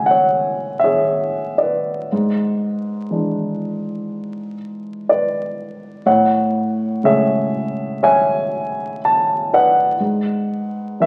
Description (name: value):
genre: classical, lyrical solo piano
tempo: 60 BPM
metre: 4/4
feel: rubato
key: A major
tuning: A4 = 441 Hz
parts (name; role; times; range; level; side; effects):
- dark baby grand piano; solo; 0.0-11.1 s; G#2 to A5; -19 LUFS; equal; none
room: moderate recital hall reverb, RT60 1.4 s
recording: very old 78 rpm record, vinyl crackle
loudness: -19 LUFS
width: mono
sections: 0.0-11.1 A section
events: none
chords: 0.0 Amaj7; 2.1 E7/G#; 6.1 Amaj7; 10.0 E7/G# (rootless)